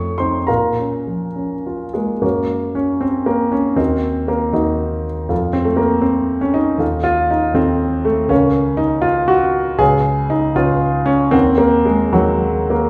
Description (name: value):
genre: classical, romantic character piece for solo piano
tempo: 67-82 BPM (dotted quarters)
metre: 6/8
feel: rubato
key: Bb minor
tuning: A4 = 443 Hz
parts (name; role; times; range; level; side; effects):
- warm concert grand piano; solo; 0.0-12.9 s; Db2 to Db6; -17 LUFS; equal; none
room: wet recital hall reverb, RT60 1.3 s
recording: heard from further back in the room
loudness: -17 LUFS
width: mono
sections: 0.0-2.2 A section; 2.2-12.9 B section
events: none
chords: 0.5 Bbm; 2.2 Gb; 3.8 Ebm; 5.3 F; 6.8 F7/Eb; 8.3 Bbm/Db; 9.8 Db7; 11.3 Ebm7